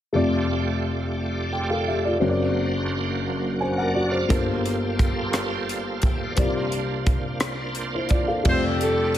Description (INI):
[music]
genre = slow gospel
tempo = 58 BPM (dotted quarters)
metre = 6/8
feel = straight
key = F major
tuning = A4 = 440 Hz
[part]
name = dark baby grand piano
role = accompaniment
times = 0.1-9.2 s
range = F1 to Ab5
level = -24 LUFS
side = left 2 dB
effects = none
[part]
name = bright tonewheel organ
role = sustained chords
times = 0.1-9.2 s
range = F#2 to A5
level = -28 LUFS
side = right 3 dB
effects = slow rotary speaker, chorus vibrato
[part]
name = crisp fusion drum kit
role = drums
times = 4.3-9.2 s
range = crash cymbal, hi-hat, kick drum, rim click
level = -24 LUFS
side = equal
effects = none
[part]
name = bright saxophone section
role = melody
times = 8.5-9.2 s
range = G4 to C5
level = -22 LUFS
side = equal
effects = none
[sound]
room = light reverb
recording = none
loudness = -21 LUFS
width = side -11 dB against mid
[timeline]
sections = 0.1-8.5 A section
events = tonewheel organ fill 3.3-4.3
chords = 0.1 F69; 2.2 Daug7/F#; 4.3 Gm11; 6.4 C9sus4; 8.5 F69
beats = | 0.14 1.18 | 2.22 3.26 | 4.30 5.34 | 6.38 7.42 | 8.46